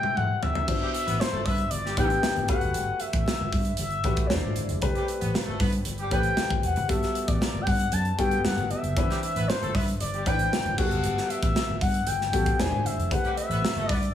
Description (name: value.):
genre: polished 1980s jazz-funk pop.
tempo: 116 BPM.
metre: 4/4.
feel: straight.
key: G major.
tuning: A4 = 441 Hz.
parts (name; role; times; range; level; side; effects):
expressive portamento lead; melody; 0.0-14.1 s; C5 to A5; -29 LUFS; left 2 dB; chorus, tape echo.
clear horn section; second line; 0.0-14.0 s; G3 to E5; -36 LUFS; equal; none.
clear grand piano; accompaniment; 0.0-14.1 s; B2 to C5; -32 LUFS; left 2 dB; wide subtle chorus.
modern studio drum kit; drums; 0.0-14.1 s; crash cymbal, hi-hat, kick drum, snare drum, toms; -28 LUFS; equal; gated reverb.
fingered electric bass; bass; 0.7-14.1 s; E1 to G2; -29 LUFS; equal; none.
congas; percussion; 0.9-14.0 s; none; -40 LUFS; right 3 dB; none.
room: light reverb.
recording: small room ambience.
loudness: -23 LUFS.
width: side -10 dB against mid.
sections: 0.7-14.1 A section.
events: break 0.0-0.7; drum fill 0.0-0.7.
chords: 0.0 D9sus4; 0.7 Cmaj9/G; 2.5 Gmaj9; 4.3 E7alt; 4.8 Am9/G; 6.9 Gmaj9; 9.0 Cmaj9/G; 10.8 Gmaj9; 12.6 E7alt; 13.1 Am9/G.